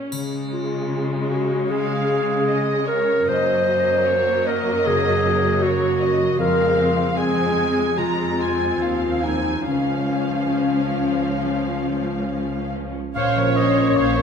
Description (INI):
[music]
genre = cinematic, emotional film score for orchestra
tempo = 67-79 BPM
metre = 4/4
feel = rubato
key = Db major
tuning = A4 = 440 Hz
[part]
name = muted studio viola section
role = accompaniment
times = 0.0-14.2 s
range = F3 to Db5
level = -26 LUFS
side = equal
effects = none
[part]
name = concert harp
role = arpeggios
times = 0.0-14.2 s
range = F2 to F5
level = -29 LUFS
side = left 9 dB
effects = none
[part]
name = muted symphonic cello section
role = bass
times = 0.1-14.2 s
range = Db2 to Db3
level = -27 LUFS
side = right 3 dB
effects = none
[part]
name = triangle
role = percussion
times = 0.1-1.7 s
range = none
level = -39 LUFS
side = equal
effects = none
[part]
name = mellow clarinet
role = second line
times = 0.5-12.3 s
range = Db4 to C5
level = -21 LUFS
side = equal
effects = none
[part]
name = muted symphonic violin section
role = second line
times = 1.7-14.2 s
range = C5 to Bb5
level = -27 LUFS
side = left 1 dB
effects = none
[part]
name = muted symphonic violin section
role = melody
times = 13.2-14.2 s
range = Db5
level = -27 LUFS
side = equal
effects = none
[part]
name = warm oboe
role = second line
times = 13.2-14.2 s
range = Db5 to F5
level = -24 LUFS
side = right 3 dB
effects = none
[part]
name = dark French horn section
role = sustained chords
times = 13.2-14.2 s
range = Db4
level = -20 LUFS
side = left 2 dB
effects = none
[part]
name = muted studio double bass section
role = bass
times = 13.2-14.2 s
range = Bb1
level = -26 LUFS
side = right 5 dB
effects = none
[sound]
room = wet scoring stage reverb, RT60 1.8 s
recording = minimal, uncompressed stereo recording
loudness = -18 LUFS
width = side -7 dB against mid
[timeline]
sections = 0.0-13.2 A section; 13.2-14.2 B section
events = none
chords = 0.1 Db; 3.3 Gb; 6.4 Fm; 9.7 Db; 13.2 Bbmadd9